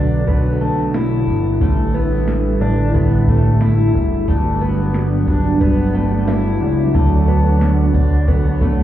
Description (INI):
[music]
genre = dream pop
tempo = 90 BPM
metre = 4/4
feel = straight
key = unclear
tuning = A4 = 440 Hz
[part]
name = ensemble organ-string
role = sustained chords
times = 0.0-8.8 s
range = D3 to C#5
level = -20 LUFS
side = right 1 dB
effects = ensemble chorus
[part]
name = picked twelve-string acoustic guitar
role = arpeggios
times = 0.0-8.8 s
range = A3 to E4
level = -21 LUFS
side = left 2 dB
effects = wide subtle chorus, ping-pong delay
[part]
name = fat analog bass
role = bass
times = 0.0-8.8 s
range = F#1 to D2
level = -17 LUFS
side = equal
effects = none
[part]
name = soft vintage rhythm box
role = drums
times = 0.3-8.8 s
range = hi-hat, kick drum, snare drum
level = -18 LUFS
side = equal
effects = none
[sound]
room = light reverb, digital ambience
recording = heard muffled through a wall, club reverb, EQ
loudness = -14 LUFS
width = side -12 dB against mid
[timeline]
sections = 0.0-8.8 A section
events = none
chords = 0.0 Bm7; 1.6 A7sus4; 4.3 Gmaj7; 6.9 Dmaj7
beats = 0.28 0.94 | 1.61 2.28 2.94 3.61 | 4.28 4.94 5.61 6.28 | 6.94 7.61 8.28